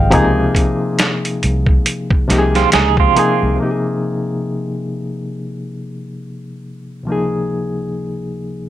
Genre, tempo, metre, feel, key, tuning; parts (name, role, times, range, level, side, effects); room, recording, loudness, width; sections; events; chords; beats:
R&B, neo-soul; 69 BPM; 4/4; swing 58% on 16ths; F minor; A4 = 440 Hz
bright reed electric piano; accompaniment; 0.0-8.7 s; Db2 to G5; -18 LUFS; left 2 dB; fast tremolo
vintage muted fingered electric bass; bass; 0.0-3.6 s; Ab1 to Db2; -17 LUFS; equal
dusty soul sampler-style drum kit; drums; 0.1-3.4 s; hi-hat, kick drum, snare drum; -16 LUFS; equal
semi-hollow electric guitar; second line; 2.6-3.6 s; C4 to Ab4; -15 LUFS; right 13 dB; tremolo
light reverb; -14 LUFS; side -13 dB against mid
0.0-3.6 A section; 3.6-8.7 B section
0.1 Dbmaj9; 3.6 Fm7; 7.1 Dbmaj9
| 0.11 0.98 1.85 2.72 | 3.59 4.46 5.33 6.20 | 7.07 7.94